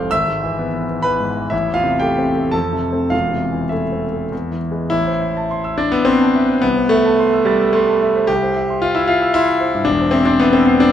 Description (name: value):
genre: classical, romantic character piece for solo piano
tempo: 99-131 BPM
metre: 3/4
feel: rubato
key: A minor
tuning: A4 = 441 Hz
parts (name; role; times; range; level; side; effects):
- clear concert grand piano; solo; 0.0-10.9 s; E1 to C7; -14 LUFS; equal; none
room: moderate concert hall reverb, RT60 2.0 s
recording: close, detailed microphones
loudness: -14 LUFS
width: side -10 dB against mid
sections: 0.0-4.9 A section; 4.9-10.9 B section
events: none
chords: 0.1 E/G#; 1.5 Am; 2.5 F; 3.1 Am/E; 4.3 E; 4.9 Am; 6.6 Am/C; 8.3 C; 9.9 C/E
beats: | 0.12 0.58 1.04 | 1.52 2.02 2.54 | 3.13 3.72 4.32 | 4.92 5.50 6.07 | 6.63 7.20 7.74 | 8.29 8.82 9.34 | 9.86 10.39